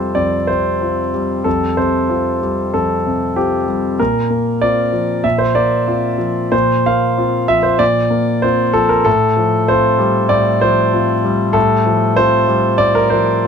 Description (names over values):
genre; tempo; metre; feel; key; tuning
neoclassical minimalist piano; 96 BPM; 4/4; rubato; F major; A4 = 440 Hz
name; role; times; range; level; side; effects
warm concert grand piano; solo; 0.0-13.5 s; F2 to F5; -13 LUFS; equal; none
room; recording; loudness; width
light reverb; close, detailed microphones; -13 LUFS; side -7 dB against mid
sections
0.0-13.5 A section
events
none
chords
0.0 Fadd9; 4.0 Bbsus2; 9.1 Fadd9/A